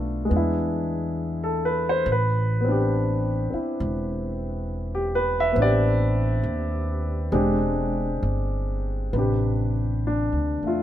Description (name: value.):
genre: jazz ballad.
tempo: 68 BPM.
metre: 4/4.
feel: swing 69% on 8ths.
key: A minor.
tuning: A4 = 441 Hz.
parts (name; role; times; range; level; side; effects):
warm grand piano; accompaniment; 0.0-10.8 s; C3 to E5; -24 LUFS; equal; none.
upright bass; bass; 0.0-10.8 s; E1 to E2; -25 LUFS; equal; none.
room: little or no reverb.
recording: close, detailed microphones.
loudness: -22 LUFS.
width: side -11 dB against mid.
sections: 0.0-9.1 A section; 9.1-10.8 B section.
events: none.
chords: 0.3 E7; 2.1 Am11; 7.3 E7alt; 9.1 Am11.